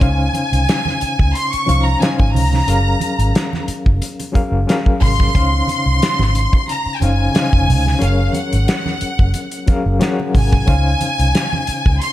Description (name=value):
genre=lush 1970s-style soul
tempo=90 BPM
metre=4/4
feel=swing 54% on 16ths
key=Db major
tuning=A4 = 440 Hz
part: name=bright studio violin section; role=melody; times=0.0-12.1 s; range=F5 to Db6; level=-20 LUFS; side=equal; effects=none
part: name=overdriven reed electric piano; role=accompaniment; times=0.0-12.1 s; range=Db3 to Gb5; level=-22 LUFS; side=left 3 dB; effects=fast tremolo
part: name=vintage muted fingered electric bass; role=bass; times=0.0-12.0 s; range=F1 to Db2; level=-16 LUFS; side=equal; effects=none
part: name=warm soul drum kit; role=drums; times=0.0-12.1 s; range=hi-hat, kick drum, snare drum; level=-17 LUFS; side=equal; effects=none
part: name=congas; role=percussion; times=0.0-12.1 s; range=none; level=-26 LUFS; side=right 4 dB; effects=none
room=small room ambience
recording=none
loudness=-14 LUFS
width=side -14 dB against mid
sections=0.0-12.1 A section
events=none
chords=0.0 Dbmaj7; 2.7 Gbmaj7; 5.3 Dbmaj7; 8.0 Gbmaj7; 10.7 Dbmaj7